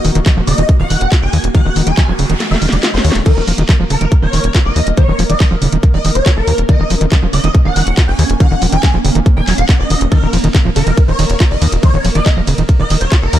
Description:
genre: psychedelic trance.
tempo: 140 BPM.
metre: 4/4.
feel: straight.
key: Eb minor.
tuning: A4 = 441 Hz.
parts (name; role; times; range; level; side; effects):
swarming rave lead; melody; 0.0-13.4 s; Bb4 to Ab5; -20 LUFS; equal; chorus, phaser, sidechain pumping, digital delay.
pulsing gated texture; sustained chords; 0.0-13.4 s; Bb3 to Bb4; -22 LUFS; right 2 dB; chorus, built-in reverb, sidechain pumping.
screaming distorted acid line; riff; 0.0-13.4 s; Db3 to F4; -18 LUFS; moving between left 5 dB and right 5 dB; distortion, chorus, auto-pan, sidechain pumping, digital delay.
tight sequencer bass; bass; 0.0-13.4 s; Eb1 to Eb2; -15 LUFS; equal; none.
garage drum kit; drums; 0.0-13.4 s; crash cymbal, handclaps, hi-hat, ride cymbal, snare drum; -20 LUFS; equal; none.
electronic kick drum; drums; 0.3-13.2 s; none; -10 LUFS; equal; none.
noise sweep; sound effects; 1.8-3.3 s; none; -27 LUFS; right 2 dB; none.
room: digital ambience.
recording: dark, warm production, lossy compression artefacts.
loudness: -10 LUFS.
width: side -12 dB against mid.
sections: 0.0-13.4 A section.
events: noise sweep 1.8-3.3; kick drops out 2.4-3.3; drum fill 2.4-3.3.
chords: 0.0 Eb5.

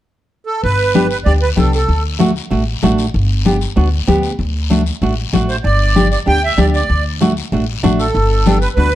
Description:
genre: latin, cumbia.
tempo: 192 BPM.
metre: 4/4.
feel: straight.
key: G major.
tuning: A4 = 443 Hz.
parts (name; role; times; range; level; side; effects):
accordion; melody; 0.5-2.0, 5.5-8.9 s; A4 to G5; -17 LUFS; right 3 dB; light tremolo tuning, slapback echo, plate reverb.
upright bass; bass; 0.6-8.9 s; G1 to D2; -16 LUFS; equal; none.
congas; percussion; 0.6-8.9 s; none; -19 LUFS; left 5 dB; none.
guiro; percussion; 0.6-8.9 s; none; -28 LUFS; left 8 dB; none.
nylon-string guitar; accompaniment; 0.9-8.9 s; A3 to G4; -17 LUFS; right 2 dB; none.
room: moderate studio reverb, RT60 0.9 s.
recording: dark, warm production.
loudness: -12 LUFS.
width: side -13 dB against mid.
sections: 0.6-8.9 A section.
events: none.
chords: 0.0 N.C.; 0.6 G; 1.9 D; 3.1 G; 4.4 D; 5.6 G; 6.9 D; 8.1 G.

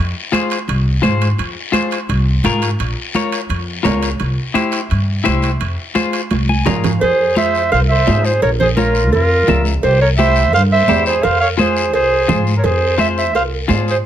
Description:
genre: latin, cumbia.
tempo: 170 BPM.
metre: 4/4.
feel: straight.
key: F harmonic minor.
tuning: A4 = 440 Hz.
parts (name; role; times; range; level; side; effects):
upright bass; bass; 0.0-14.0 s; Bb1 to Ab2; -17 LUFS; equal; none.
clean electric guitar; accompaniment; 0.3-13.9 s; E4 to Ab5; -21 LUFS; left 6 dB; spring reverb.
congas; percussion; 0.3-13.9 s; none; -20 LUFS; right 3 dB; none.
guiro; percussion; 0.3-14.1 s; none; -29 LUFS; left 6 dB; none.
timbales and cowbell; percussion; 0.3-13.9 s; none; -24 LUFS; right 5 dB; none.
breathy clarinet; melody; 7.0-14.0 s; Bb4 to F5; -15 LUFS; right 3 dB; none.
growling trumpet; second line; 7.0-14.0 s; F4 to Db5; -23 LUFS; left 4 dB; none.
room: light reverb.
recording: close, detailed microphones.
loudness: -13 LUFS.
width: side -10 dB against mid.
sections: 0.0-7.0 A section; 7.0-14.1 B section.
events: drum fill 6.3-7.0; clean electric guitar fill 6.3-7.0.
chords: 0.0 Fm; 2.8 Bbm; 4.2 C; 5.6 Fm; 8.4 Bbm; 9.8 C; 11.2 Fm.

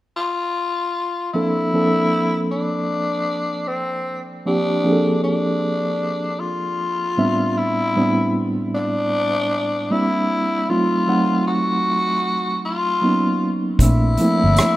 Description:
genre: R&B, neo-soul.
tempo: 77 BPM.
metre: 4/4.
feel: swing 59% on 16ths.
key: unclear.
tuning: A4 = 440 Hz.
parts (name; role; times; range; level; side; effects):
growling tenor saxophone; melody; 0.2-14.8 s; C4 to Gb4; -21 LUFS; left 2 dB; none.
mellow reed electric piano; accompaniment; 1.3-14.8 s; A2 to Gb5; -20 LUFS; right 1 dB; fast tremolo.
vintage muted fingered electric bass; bass; 13.8-14.6 s; G1 to Bb1; -17 LUFS; equal; none.
unplugged drum kit; drums; 13.8-14.8 s; hi-hat, kick drum, rim click; -18 LUFS; equal; none.
room: light reverb, studio ambience.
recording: rough home demo mix.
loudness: -18 LUFS.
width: side -16 dB against mid.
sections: 0.0-1.3 A section; 1.3-14.8 B section.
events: none.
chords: 0.0 N.C.; 1.3 Bbmaj7; 7.2 Am11; 9.9 C7; 10.7 F7b9; 13.0 Bmaj7; 13.8 Bbmaj7.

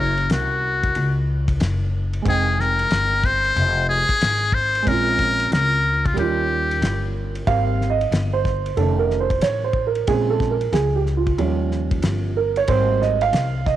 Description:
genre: hip hop, jazz-hop.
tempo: 92 BPM.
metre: 4/4.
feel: swing 64% on 16ths.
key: Ab major.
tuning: A4 = 439 Hz.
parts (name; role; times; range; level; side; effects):
trumpet with metal mute; melody; 0.0-7.1 s; F4 to C5; -20 LUFS; left 2 dB; cassette tape.
dark upright piano; accompaniment; 0.0-13.8 s; Db3 to G5; -22 LUFS; right 7 dB; cassette tape.
upright bass; bass; 0.0-13.8 s; F1 to Eb2; -22 LUFS; left 1 dB; none.
cloth-damped thuddy drum kit; drums; 0.2-13.8 s; hi-hat, kick drum, ride cymbal, snare drum; -26 LUFS; left 1 dB; cassette tape.
room: light reverb, small room ambience.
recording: home recording on cassette.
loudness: -18 LUFS.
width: side -12 dB against mid.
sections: 0.0-7.5 A section; 7.5-13.8 B section.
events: break 6.2-7.5; upright piano solo 7.5-13.8.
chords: 0.0 Gb7#11; 2.3 Fm7; 4.9 Bbm7; 6.2 Eb7; 7.5 Abmaj7; 8.8 F7b13; 10.1 Bbm9; 11.4 Eb9; 12.7 Abmaj7.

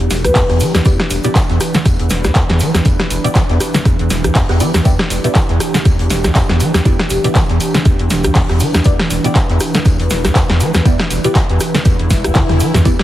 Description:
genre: acid house.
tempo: 120 BPM.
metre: 4/4.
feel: swing 56% on 16ths.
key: E minor.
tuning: A4 = 439 Hz.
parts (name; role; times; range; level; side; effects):
warbly tape-like pad; sustained chords; 0.0-13.0 s; E3 to B4; -21 LUFS; right 2 dB; chorus, built-in reverb, sidechain pumping.
deep acid bass; riff; 0.0-13.0 s; E1 to E3; -16 LUFS; equal; tube saturation, lush chorus, sidechain pumping.
punchy analog drum machine; drums; 0.0-13.0 s; handclaps, hi-hat, rim click, snare drum, toms; -17 LUFS; equal; none.
jazz brush drum kit; drums; 0.1-13.0 s; hi-hat, snare drum, tambourine; -30 LUFS; left 2 dB; high-pass filter on hats, high-pass filter on snare, high-pass filter on perc, high-pass filter on room.
egg shaker; percussion; 0.1-13.0 s; none; -29 LUFS; right 2 dB; none.
vibraphone with soft mallets; melody; 0.2-0.6, 7.1-7.3 s; G4 to B4; -20 LUFS; left 2 dB; ping-pong delay.
electronic kick drum; drums; 0.4-13.0 s; none; -14 LUFS; equal; none.
filtered dub chord stab; stabs; 0.9-12.9 s; B3 to F#5; -22 LUFS; equal; phaser, lush chorus, ping-pong delay.
swell; sound effects; 12.1-12.9 s; none; -22 LUFS; left 3 dB; none.
room: light reverb, studio reverb.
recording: heavily compressed radio sound, multiband compression.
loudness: -11 LUFS.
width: side -14 dB against mid.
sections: 0.0-13.0 A section.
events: swell 12.1-12.9; drum fill 12.4-12.9.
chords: 0.0 Em7.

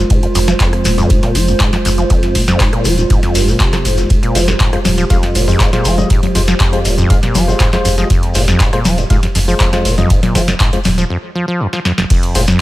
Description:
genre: acid house.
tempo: 120 BPM.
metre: 4/4.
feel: straight.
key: F minor.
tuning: A4 = 443 Hz.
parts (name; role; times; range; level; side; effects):
dark analog pad; sustained chords; 0.0-12.6 s; Ab3 to C5; -23 LUFS; right 1 dB; chorus, sidechain pumping.
acid bass, saw; riff; 0.0-12.6 s; F1 to F3; -17 LUFS; equal; tube saturation, tape echo.
saturated sub bass; bass; 0.0-12.5 s; Eb1 to F1; -16 LUFS; equal; sidechain pumping.
warbly tape-like pad; texture; 0.0-11.1 s; F4 to C5; -24 LUFS; right 2 dB; chorus, built-in reverb, sidechain pumping.
booming analog drum machine; drums; 0.1-12.6 s; congas, crash cymbal, handclaps, hi-hat, rim click, snare drum; -18 LUFS; equal; none.
dusty soul sampler-style drum kit; drums; 0.1-12.5 s; ride cymbal, snare drum; -30 LUFS; right 3 dB; none.
electronic kick drum; drums; 0.1-12.2 s; none; -14 LUFS; equal; none.
shekere; percussion; 0.1-12.6 s; none; -25 LUFS; left 4 dB; none.
percussive organ stab; stabs; 4.4-12.4 s; Ab3 to F5; -21 LUFS; left 2 dB; chorus, tape echo.
room: little or no reverb.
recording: none.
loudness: -11 LUFS.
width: side -16 dB against mid.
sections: 0.0-12.1 A section.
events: filter sweep on acid bass 0.0-12.1; break 11.1-12.1; drum fill 11.7-12.1.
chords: 0.0 Fm.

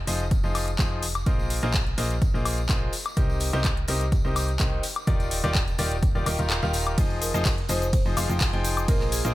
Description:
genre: piano house.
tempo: 126 BPM.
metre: 4/4.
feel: straight.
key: F dorian.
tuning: A4 = 440 Hz.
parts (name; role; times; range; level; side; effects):
solid FM bass; bass; 0.0-9.3 s; Eb1 to C2; -28 LUFS; equal; sidechain pumping.
bright grand piano; riff; 0.1-9.3 s; C3 to G5; -29 LUFS; left 2 dB; vintage 12-bit sampler grit, sidechain pumping.
garage drum kit; drums; 0.1-9.3 s; handclaps, hi-hat, ride cymbal, shaker, woodblock; -30 LUFS; left 2 dB; none.
tambourine; percussion; 0.1-9.3 s; none; -39 LUFS; equal; none.
electronic kick drum; drums; 0.3-9.0 s; none; -25 LUFS; equal; none.
marimba with medium mallets; melody; 7.2-9.3 s; Ab4 to C5; -33 LUFS; right 2 dB; vintage 12-bit sampler grit.
room: digital ambience.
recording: none.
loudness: -22 LUFS.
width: side -16 dB against mid.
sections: 0.0-7.0 A section; 7.0-9.3 B section.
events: kick drops out 6.5-7.0; drop 7.0-9.3.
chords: 0.0 Fm7; 1.3 Bb9sus4; 2.9 Cm7; 4.8 Ebmaj9; 7.0 Fm7.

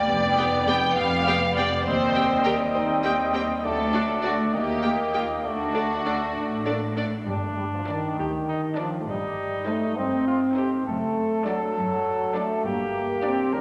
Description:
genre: cinematic, playful, whimsical film cue.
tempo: 67 BPM (dotted quarters).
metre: 6/8.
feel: straight.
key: unclear.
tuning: A4 = 442 Hz.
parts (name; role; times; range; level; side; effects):
clear clarinet; second line; 0.0-6.8 s; Bb3 to Eb4; -36 LUFS; equal; none.
mellow hollow small flute group; second line; 0.0-6.9 s; F#5 to A5; -32 LUFS; equal; none.
warm studio violin section; second line; 0.0-13.5 s; F4 to G5; -30 LUFS; equal; none.
mellow French horn section; sustained chords; 0.0-13.6 s; Eb3 to Eb4; -31 LUFS; equal; none.
dark cor anglais; second line; 0.1-13.6 s; D4 to Eb5; -32 LUFS; equal; none.
warm bassoon; accompaniment; 0.1-7.0 s; G3 to B3; -34 LUFS; equal; none.
clear studio cello section; bass; 0.1-13.6 s; D2 to A2; -35 LUFS; equal; none.
rich studio double bass section; bass; 0.1-13.2 s; F1 to Eb2; -36 LUFS; equal; none.
warm studio violin section; melody; 0.4-13.4 s; C5 to G5; -37 LUFS; equal; none.
rich studio viola section; accompaniment; 0.4-13.4 s; Bb3 to A4; -35 LUFS; equal; none.
room: wet scoring stage reverb, RT60 2.1 s.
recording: none.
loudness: -25 LUFS.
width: mono.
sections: 0.0-7.3 A section; 7.3-13.6 B section.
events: none.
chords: 0.1 G7/F; 1.9 Cm/Eb; 3.6 D; 4.5 Eb; 5.4 D; 7.3 Gm; 9.1 Am7b5/G; 10.9 D/F#; 12.6 Gm.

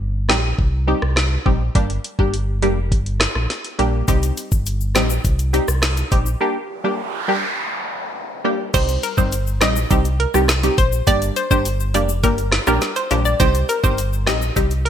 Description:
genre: dancehall.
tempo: 103 BPM.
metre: 4/4.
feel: straight.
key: C minor.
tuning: A4 = 439 Hz.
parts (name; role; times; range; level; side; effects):
punchy chord stab; accompaniment; 0.0-14.7 s; G3 to G4; -22 LUFS; equal; chorus, phaser.
sub bass with octave; bass; 0.0-14.9 s; F1 to C2; -20 LUFS; equal; none.
island pop drum kit; drums; 0.3-14.9 s; crash cymbal, hi-hat, kick drum, rim click, snare drum; -19 LUFS; equal; vintage 12-bit sampler grit, gated reverb.
egg shaker and timbales; percussion; 4.1-14.8 s; none; -30 LUFS; left 13 dB; none.
noise sweep; sound effects; 6.7-8.7 s; none; -26 LUFS; right 2 dB; none.
hollow square pluck; melody; 8.7-14.9 s; Bb4 to Eb5; -22 LUFS; equal; chorus, ping-pong delay.
room: light reverb, digital ambience.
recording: bright 1980s-style digital production.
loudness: -16 LUFS.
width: side -9 dB against mid.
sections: 0.0-8.7 A section; 8.7-14.9 B section.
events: break 6.4-8.7; noise sweep 6.7-8.7.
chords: 0.0 Cm; 1.8 Gm; 4.1 Cm; 6.4 Gm; 8.7 Cm; 11.1 Gm; 13.4 Cm.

